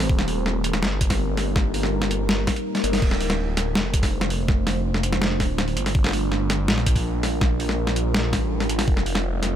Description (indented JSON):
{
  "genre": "half-time drum and bass",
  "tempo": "164 BPM",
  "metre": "4/4",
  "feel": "half-time",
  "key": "D phrygian",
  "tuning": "A4 = 441 Hz",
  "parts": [
    { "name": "deep dark ambient pad", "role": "sustained chords", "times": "0.0-9.6 s", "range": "G3 to C5", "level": "-28 LUFS", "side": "equal", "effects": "chorus, built-in reverb, sidechain pumping" },
    { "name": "phased detuned saw bass", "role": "bass", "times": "0.0-9.6 s", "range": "D1 to Bb1", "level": "-25 LUFS", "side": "equal", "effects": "phaser" },
    { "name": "boom bap sampler-style drum kit", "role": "drums", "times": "0.0-9.5 s", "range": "crash cymbal, hi-hat, snare drum", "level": "-25 LUFS", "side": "equal", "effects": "overdrive" },
    { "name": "electronic kick drum", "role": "drums", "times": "0.1-8.9 s", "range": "none", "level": "-22 LUFS", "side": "equal", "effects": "overdrive" }
  ],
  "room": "little or no reverb",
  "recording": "none",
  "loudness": "-20 LUFS",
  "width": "side -10 dB against mid",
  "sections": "0.0-9.6 A section",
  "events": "drum fill 2.7",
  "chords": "0.1 Eb; 3.0 Dm7; 5.9 Gm7; 8.9 F"
}